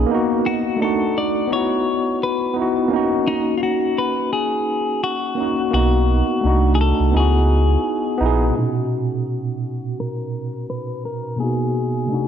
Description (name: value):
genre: lo-fi hip hop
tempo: 85 BPM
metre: 4/4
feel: swing 57% on 16ths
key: unclear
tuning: A4 = 444 Hz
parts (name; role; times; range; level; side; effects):
- tine electric piano; accompaniment; 0.0-12.3 s; A#2 to G#4; -20 LUFS; equal; slow stereo tremolo, cassette tape, low-pass filter
- sub bass with octave; bass; 0.0-0.1, 5.7-8.5 s; A#1 to C#2; -16 LUFS; right 1 dB; none
- clean electric guitar; melody; 0.5-12.3 s; D#4 to D5; -24 LUFS; left 4 dB; low-pass filter
room: moderate lush hall reverb, RT60 2.3 s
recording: dreamy mix soaked in reverb, nothing above 11.0 kHz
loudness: -17 LUFS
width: side -9 dB against mid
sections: 0.0-8.6 A section; 8.6-12.3 B section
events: break 0.1-5.7; filter sweep 8.6-12.3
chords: 0.1 Bmaj7/A#; 0.8 D/A; 1.5 C#m11; 2.9 Bmaj13/A# (rootless); 5.7 Bmaj7; 6.4 Cdim7; 7.2 C#m11; 8.6 Bmaj7; 11.4 G#m9/B